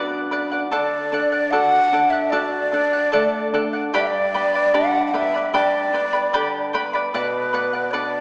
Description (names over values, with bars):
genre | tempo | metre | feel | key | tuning
andean folk, Andean ensemble | 75 BPM | 4/4 | straight | unclear | A4 = 440 Hz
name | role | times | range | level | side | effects
breathy large quena | melody | 0.0-8.2 s | B4 to F#5 | -20 LUFS | equal | none
charango | accompaniment | 0.0-8.2 s | G4 to B5 | -22 LUFS | equal | none
flamenco guitar | accompaniment | 0.0-8.2 s | F#2 to F#5 | -26 LUFS | equal | none
room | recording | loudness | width
wet scoring stage reverb, RT60 1.8 s | recorded in a church or concert hall, small speaker sound | -17 LUFS | side -27 dB against mid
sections
0.7-8.2 A section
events
nylon-string guitar fill 0.0-0.7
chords
0.0 Bm; 0.7 D; 3.9 G; 7.1 Bm